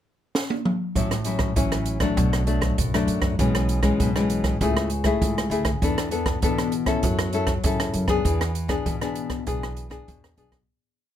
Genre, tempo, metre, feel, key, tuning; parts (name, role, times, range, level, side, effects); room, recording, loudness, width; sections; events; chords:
samba and choro; 99 BPM; 4/4; straight; A4 = 440 Hz
open jazz drum kit; drums; 0.3-10.7 s; hi-hat, kick drum, rim click, snare drum, toms; -26 LUFS; right 1 dB
nylon-string guitar; accompaniment; 1.0-10.7 s; F#2 to A4; -25 LUFS; left 4 dB
upright bass; bass; 1.0-10.6 s; A1 to E3; -26 LUFS; right 1 dB
little or no reverb; close, detailed microphones; -21 LUFS; side -10 dB against mid
0.0-1.0 pickup bar; 1.0-10.7 groove
drum fill 0.3-1.0; fade-out 8.3-10.7
0.0 N.C.; 1.0 A6; 2.2 Bm7; 3.4 E6/B; 4.6 Amaj7/C#; 5.8 E7sus4; 7.0 F#m7; 8.3 E7